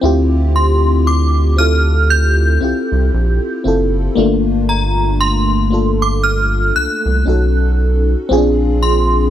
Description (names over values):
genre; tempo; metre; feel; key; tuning
contemporary R&B; 58 BPM; 4/4; swing 58% on 16ths; unclear; A4 = 441 Hz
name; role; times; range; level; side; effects
FM electric piano with soft pad layer; accompaniment; 0.0-9.3 s; A3 to A4; -17 LUFS; left 1 dB; chorus
rubbery square bass; bass; 0.0-9.3 s; F#1 to D2; -14 LUFS; equal; none
synth chime; melody; 0.6-9.3 s; Bb5 to G6; -18 LUFS; right 1 dB; ensemble chorus, phaser
room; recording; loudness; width
little or no reverb; none; -12 LUFS; side -11 dB against mid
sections
0.0-9.3 A section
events
none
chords
0.0 Dm11; 4.2 Gm7; 7.3 B9; 8.3 Bb9